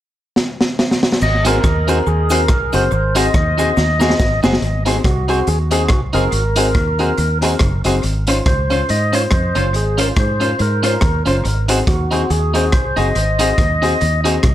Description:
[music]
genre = ska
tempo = 141 BPM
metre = 4/4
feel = swing 57% on 8ths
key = Ab mixolydian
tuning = A4 = 441 Hz
[part]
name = raw garage drum kit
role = drums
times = 0.4-14.5 s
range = crash cymbal, hi-hat, kick drum, rim click, snare drum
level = -18 LUFS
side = equal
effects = analog delay
[part]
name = tonewheel organ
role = melody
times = 1.2-14.2 s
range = Gb4 to Eb5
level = -20 LUFS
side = equal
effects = slow rotary speaker, analog delay
[part]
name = fingered electric bass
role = bass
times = 1.2-14.5 s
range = Gb1 to Ab2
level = -18 LUFS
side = equal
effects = none
[part]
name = cabasa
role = percussion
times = 1.2-4.5 s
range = none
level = -35 LUFS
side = left 3 dB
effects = none
[part]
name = clean electric guitar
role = accompaniment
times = 1.4-14.3 s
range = Db4 to C5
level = -23 LUFS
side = right 4 dB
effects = analog delay
[part]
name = warm upright piano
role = stabs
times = 1.4-14.3 s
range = C4 to C5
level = -22 LUFS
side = left 4 dB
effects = none
[sound]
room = light reverb, studio reverb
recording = none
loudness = -13 LUFS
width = side -12 dB against mid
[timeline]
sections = 0.0-1.2 A section; 1.2-4.6 B section; 4.6-14.5 C section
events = drum fill 0.4-1.2, 3.8-4.6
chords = 0.0 N.C.; 1.2 Ab7; 8.0 Dbmaj7; 11.4 Ab7

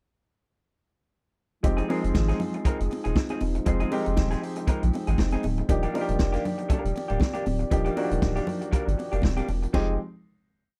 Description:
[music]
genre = disco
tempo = 119 BPM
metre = 4/4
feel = swing 56% on 16ths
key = F dorian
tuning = A4 = 441 Hz
[part]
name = dark baby grand piano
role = accompaniment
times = 1.6-10.0 s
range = F3 to Ab4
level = -33 LUFS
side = equal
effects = none
[part]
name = electric guitar through a small old amp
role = accompaniment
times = 1.6-9.9 s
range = F3 to Bb4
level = -37 LUFS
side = equal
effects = none
[part]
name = mellow French horn section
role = sustained chords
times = 1.6-10.0 s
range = Eb3 to D5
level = -38 LUFS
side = equal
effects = none
[part]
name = saturated sub bass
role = bass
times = 1.6-10.0 s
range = D1 to Bb1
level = -29 LUFS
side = equal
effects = none
[part]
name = vintage drum kit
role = drums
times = 1.6-9.9 s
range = crash cymbal, hi-hat, kick drum, snare drum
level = -27 LUFS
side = equal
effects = none
[part]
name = congas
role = percussion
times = 1.6-10.0 s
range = none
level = -36 LUFS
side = equal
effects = none
[sound]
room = little or no reverb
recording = dry, close 1970s-style studio recording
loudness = -26 LUFS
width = mono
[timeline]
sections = 1.6-9.7 verse; 9.7-10.8 final chord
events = none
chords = 1.6 Fm7; 5.7 Ebmaj7; 9.7 Fm7

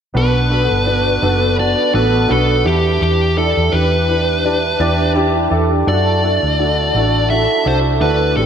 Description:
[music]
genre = pop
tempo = 84 BPM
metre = 4/4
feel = swing 56% on 16ths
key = E minor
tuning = A4 = 440 Hz
[part]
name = warm concert grand piano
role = accompaniment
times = 0.1-8.5 s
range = A2 to D5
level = -17 LUFS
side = right 2 dB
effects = ensemble chorus
[part]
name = hollow-body short-scale fingered electric bass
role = bass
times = 0.1-8.5 s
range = F#1 to F#2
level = -18 LUFS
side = left 1 dB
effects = none
[part]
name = fuzz lead guitar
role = melody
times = 0.2-8.5 s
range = G4 to E5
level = -17 LUFS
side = left 1 dB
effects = distortion, diffuse ambient delay
[sound]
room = moderate lush hall reverb, RT60 2.1 s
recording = dreamy mix soaked in reverb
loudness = -13 LUFS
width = side -8 dB against mid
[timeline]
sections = 0.1-8.5 A section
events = none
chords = 0.1 Bm; 2.6 Em7; 5.9 Dadd9

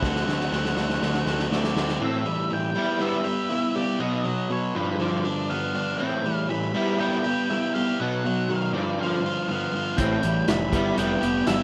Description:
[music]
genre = indie rock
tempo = 120 BPM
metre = 4/4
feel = straight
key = unclear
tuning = A4 = 440 Hz
[part]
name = octave-fuzz lead guitar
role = melody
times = 0.0-11.6 s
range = B4 to B5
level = -34 LUFS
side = equal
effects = distortion
[part]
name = overdriven semi-hollow guitar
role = riff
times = 0.0-11.6 s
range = G2 to G4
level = -29 LUFS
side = equal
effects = none
[part]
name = fuzz picked electric bass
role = bass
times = 0.0-2.0, 10.0-11.6 s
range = F1 to D2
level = -32 LUFS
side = equal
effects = overdrive
[part]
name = vintage drum kit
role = drums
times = 0.0-2.0, 10.0-11.6 s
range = hi-hat, kick drum, snare drum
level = -30 LUFS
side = equal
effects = none
[part]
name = crunchy overdriven guitar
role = riff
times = 2.0-11.6 s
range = G2 to E4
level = -29 LUFS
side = equal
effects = ensemble chorus
[sound]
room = little or no reverb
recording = rough home demo mix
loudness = -25 LUFS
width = mono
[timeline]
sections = 0.0-2.0 A section; 2.0-11.6 B section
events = drum fill 0.0-2.0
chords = 0.0 D7; 2.0 Am7; 2.8 Em/G; 4.0 B; 4.8 G7; 6.0 Am7; 6.8 Em/G; 8.0 B; 8.7 G7; 10.0 Am7; 10.7 Em

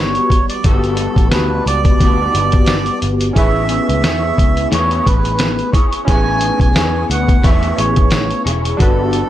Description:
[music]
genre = indie pop, bedroom pop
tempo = 88 BPM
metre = 4/4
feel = swing 55% on 16ths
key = A major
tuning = A4 = 440 Hz
[part]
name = melodica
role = melody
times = 0.0-9.3 s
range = A4 to G#5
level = -19 LUFS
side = right 3 dB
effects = lush chorus, tape echo
[part]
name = electric guitar through a small old amp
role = accompaniment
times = 0.0-9.3 s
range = G3 to C#5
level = -19 LUFS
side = left 3 dB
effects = ensemble chorus, vibrato effect
[part]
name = vintage muted picked electric bass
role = bass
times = 0.0-9.2 s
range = E1 to E2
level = -19 LUFS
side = equal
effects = none
[part]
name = lo-fi sampler-style drum kit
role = drums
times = 0.2-9.3 s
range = hi-hat, kick drum, snare drum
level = -15 LUFS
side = equal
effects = none
[part]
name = warm analog keys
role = accompaniment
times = 3.3-9.3 s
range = C#4 to C#5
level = -23 LUFS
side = right 3 dB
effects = chorus, cassette tape
[sound]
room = little or no reverb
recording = lossy compression artefacts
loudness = -12 LUFS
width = side -13 dB against mid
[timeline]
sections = 0.0-9.3 A section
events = none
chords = 0.0 Gmaj9; 3.4 Amaj9

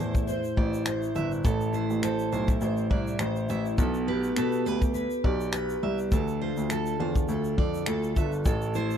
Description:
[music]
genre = acoustic pop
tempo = 103 BPM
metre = 4/4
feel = swing 55% on 16ths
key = unclear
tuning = A4 = 440 Hz
[part]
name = fingerpicked steel-string acoustic guitar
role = accompaniment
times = 0.0-9.0 s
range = A2 to C5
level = -28 LUFS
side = left 1 dB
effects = double-tracked left and right
[part]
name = picked steel-string acoustic guitar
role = arpeggios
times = 0.0-9.0 s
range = A4 to E5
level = -36 LUFS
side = right 7 dB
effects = none
[part]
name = warm baby grand piano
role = bass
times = 0.0-8.9 s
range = G1 to B2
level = -31 LUFS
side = equal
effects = none
[part]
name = natural country drum kit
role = drums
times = 0.1-9.0 s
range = finger snaps, kick drum, shaker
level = -27 LUFS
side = equal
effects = none
[sound]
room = small room ambience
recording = dry, close 1970s-style studio recording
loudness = -25 LUFS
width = side -8 dB against mid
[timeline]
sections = 0.0-9.0 A section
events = none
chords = 0.0 Am; 3.8 G/B; 6.1 Dm; 8.5 Am

